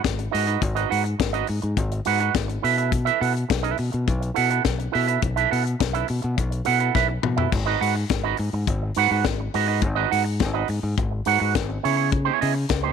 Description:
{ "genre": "disco", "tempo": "104 BPM", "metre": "4/4", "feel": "straight", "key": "unclear", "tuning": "A4 = 440 Hz", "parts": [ { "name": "electric guitar with an envelope filter", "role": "accompaniment", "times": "0.0-12.9 s", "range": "B3 to F#5", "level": "-23 LUFS", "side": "right 14 dB", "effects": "none" }, { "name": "fingered electric bass", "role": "bass", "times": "0.0-12.9 s", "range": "G#1 to C#3", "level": "-25 LUFS", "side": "left 1 dB", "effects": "none" }, { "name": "tight funk drum kit", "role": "drums", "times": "0.0-12.8 s", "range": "crash cymbal, hi-hat, kick drum, snare drum, toms", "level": "-26 LUFS", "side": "left 5 dB", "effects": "none" } ], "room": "small room ambience", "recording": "1960s-style stereo", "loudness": "-20 LUFS", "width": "side -7 dB against mid", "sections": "0.0-7.5 A section; 7.5-12.9 B section", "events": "drum fill 7.0-7.5", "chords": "0.0 G#m7; 2.6 B7sus4; 7.5 G#m7; 11.8 C#m7", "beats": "0.04 | 0.62 1.20 1.77 2.35 | 2.92 3.50 4.07 4.65 | 5.22 5.80 6.37 6.95 | 7.53 8.10 8.68 9.25 | 9.83 10.40 10.98 11.55 | 12.13 12.70" }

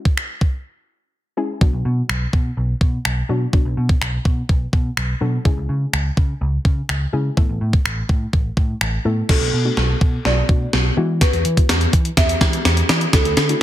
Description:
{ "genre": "dance-pop", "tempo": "125 BPM", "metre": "4/4", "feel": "straight", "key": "B dorian", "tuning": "A4 = 440 Hz", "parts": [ { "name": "soft round pluck", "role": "accompaniment", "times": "0.0-13.6 s", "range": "F#3 to A4", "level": "-26 LUFS", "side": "left 4 dB", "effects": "chorus, sidechain pumping" }, { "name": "gated 80s digital drum machine", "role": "drums", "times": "0.1-13.6 s", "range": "crash cymbal, finger snaps, hi-hat, kick drum, snare drum", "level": "-17 LUFS", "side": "equal", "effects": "gated reverb, gated reverb snare, soft clipping on snare" }, { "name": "vintage muted picked electric bass", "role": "bass", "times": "1.6-13.5 s", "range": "A1 to E3", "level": "-20 LUFS", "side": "equal", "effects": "sidechain pumping" }, { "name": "marimba with medium mallets", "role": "melody", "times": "9.3-13.6 s", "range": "A4 to E5", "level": "-25 LUFS", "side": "right 2 dB", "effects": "digital delay" } ], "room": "little or no reverb", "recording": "dense, heavily limited modern master", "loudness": "-16 LUFS", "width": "side -13 dB against mid", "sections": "0.0-9.3 A section; 9.3-13.6 B section", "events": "break 0.7-1.6; build-up 9.3-13.6; drum fill 9.3-13.6", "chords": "0.0 C#m; 1.6 Bm; 5.5 C#m; 7.4 Asus2; 9.3 Bm7; 11.0 Eadd9", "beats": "0.17 0.65 1.13 | 1.61 2.09 2.57 3.05 | 3.53 4.01 4.49 4.97 | 5.45 5.93 6.41 6.89 | 7.37 7.85 8.33 8.81 | 9.29 9.77 10.25 10.73 | 11.21 11.69 12.17 12.65 | 13.13 13.61" }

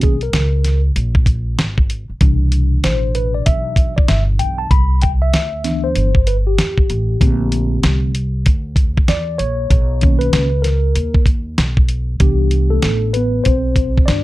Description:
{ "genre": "hip hop, jazz-hop", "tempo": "96 BPM", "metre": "4/4", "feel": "swing 62% on 16ths", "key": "C major", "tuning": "A4 = 439 Hz", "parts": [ { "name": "mellow tine electric piano", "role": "accompaniment", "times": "0.0-14.2 s", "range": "B2 to B5", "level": "-20 LUFS", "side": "left 1 dB", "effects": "medium stereo tremolo" }, { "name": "upright bass", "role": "bass", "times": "0.0-14.2 s", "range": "G1 to E2", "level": "-17 LUFS", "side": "equal", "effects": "none" }, { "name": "dusty soul sampler-style drum kit", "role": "drums", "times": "0.0-14.2 s", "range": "hi-hat, kick drum, snare drum", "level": "-14 LUFS", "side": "equal", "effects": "none" } ], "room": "little or no reverb", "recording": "dark, warm production", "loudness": "-13 LUFS", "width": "side -18 dB against mid", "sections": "0.0-12.2 A section; 12.2-14.2 B section", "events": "tine electric piano solo 0.0-12.2, 12.2-14.2", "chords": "0.0 Bmaj7sus2; 2.2 Cmaj9; 7.2 Bbmaj9; 9.7 Bmaj9; 12.2 Cmaj9", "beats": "0.34 0.96 1.58 | 2.21 2.83 3.46 4.08 | 4.71 5.33 5.96 6.58 | 7.21 7.83 8.46 9.09 | 9.71 10.34 10.96 11.59 | 12.21 12.84 13.46 14.09" }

